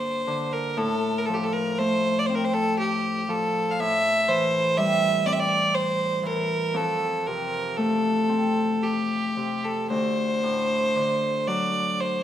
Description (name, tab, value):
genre	celtic folk, Celtic slow air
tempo	59 BPM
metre	3/4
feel	uneven beats, rubato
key	unclear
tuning	A4 = 441 Hz
part	rich fiddle	melody	0.0-12.2 s	G4 to F5	-24 LUFS	right 2 dB	none
part	Celtic harp	accompaniment	0.0-12.2 s	D2 to D4	-26 LUFS	left 3 dB	none
room	wet scoring stage reverb, RT60 1.7 s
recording	minimal, uncompressed stereo recording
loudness	-22 LUFS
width	side -11 dB against mid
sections	0.0-12.2 A section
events	none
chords	0.0 Gm; 0.8 F/A; 3.8 Am7; 6.8 F; 9.9 D7